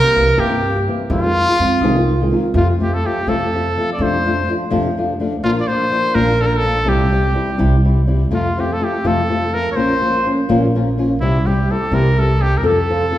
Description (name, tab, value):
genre	mexican folk, mariachi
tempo	84 BPM (dotted quarters)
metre	6/8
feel	straight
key	F major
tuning	A4 = 441 Hz
part	bright trumpet	melody	0.0-13.2 s	E4 to D5	-18 LUFS	equal	none
part	flamenco guitar	accompaniment	0.0-13.2 s	F2 to A4	-18 LUFS	left 2 dB	none
part	upright bass	bass	0.2-13.1 s	Bb1 to G2	-19 LUFS	equal	none
part	vibraphone with medium mallets	second line	1.6-2.5 s	C4 to F4	-21 LUFS	right 3 dB	none
room	wet recital hall reverb, RT60 1.7 s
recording	recorded in a church or concert hall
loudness	-14 LUFS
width	side -13 dB against mid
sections	0.0-2.6 A section; 2.6-13.2 B section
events	none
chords	0.0 C7; 1.1 Fm7; 2.6 F; 4.0 Dm7/F; 5.4 Bb; 6.9 C; 8.3 F; 9.8 Bbm; 11.2 C; 12.6 F